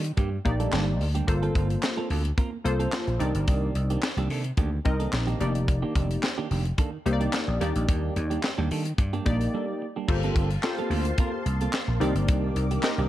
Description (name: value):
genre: early-eighties boogie funk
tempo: 109 BPM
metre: 4/4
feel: straight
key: G minor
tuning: A4 = 438 Hz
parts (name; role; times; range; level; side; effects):
- clean electric guitar; riff; 0.0-13.1 s; Eb3 to Bb4; -34 LUFS; right 6 dB; lush chorus
- vintage slap bass; bass; 0.0-13.1 s; F1 to Eb3; -26 LUFS; equal; none
- tight funk drum kit; drums; 0.0-13.1 s; crash cymbal, handclaps, hi-hat, kick drum, snare drum; -28 LUFS; equal; none
- funky polysynth comp; accompaniment; 0.4-13.1 s; Bb3 to Eb5; -30 LUFS; left 2 dB; chorus
- soft string machine; sustained chords; 10.1-13.1 s; Bb3 to D6; -34 LUFS; equal; phaser, ensemble chorus
room: small room reverb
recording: dark, warm production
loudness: -24 LUFS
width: side -14 dB against mid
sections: 0.0-10.1 A section; 10.1-13.1 B section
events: break 9.5-10.1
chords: 0.0 Ebmaj7; 1.3 Gm11; 3.2 Cm9; 5.4 F13sus4; 7.6 Ebmaj7; 10.1 Gm11; 12.0 Cm9